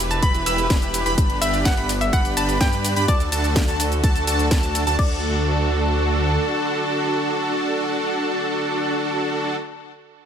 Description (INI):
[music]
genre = EDM, festival progressive house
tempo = 126 BPM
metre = 4/4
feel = straight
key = D major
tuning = A4 = 442 Hz
[part]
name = hollow square pluck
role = melody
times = 0.0-9.7 s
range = D5 to E6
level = -26 LUFS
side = equal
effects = chorus, ping-pong delay
[part]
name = warm chamber string section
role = sustained chords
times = 0.0-9.6 s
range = D3 to B4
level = -28 LUFS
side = right 2 dB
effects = sidechain pumping
[part]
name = wide detuned saw bass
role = bass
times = 0.0-6.4 s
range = E1 to G2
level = -24 LUFS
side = equal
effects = chorus, sidechain pumping
[part]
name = house drum kit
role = drums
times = 0.1-5.1 s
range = cabasa, crash cymbal, hi-hat, ride cymbal, snare drum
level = -27 LUFS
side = equal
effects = none
[part]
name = plucky unison lead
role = arpeggios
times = 0.2-9.6 s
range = A5 to B5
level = -28 LUFS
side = right 1 dB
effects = sidechain pumping, ping-pong delay
[part]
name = dense compressed supersaw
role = riff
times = 0.2-9.6 s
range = D4 to B4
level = -24 LUFS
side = equal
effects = sidechain pumping, ping-pong delay
[part]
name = electronic kick drum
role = drums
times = 0.2-5.1 s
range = none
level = -20 LUFS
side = equal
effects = none
[sound]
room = light reverb, digital ambience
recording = none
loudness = -18 LUFS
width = side -8 dB against mid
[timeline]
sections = 0.0-5.0 A section; 5.0-8.8 B section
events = drop 0.0-5.0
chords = 0.0 Em; 1.2 G; 3.1 D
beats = 0.23 0.70 | 1.18 1.65 2.13 2.61 | 3.08 3.56 4.04 4.51 | 4.99 5.46 5.94 6.42 | 6.89 7.37 7.84 8.32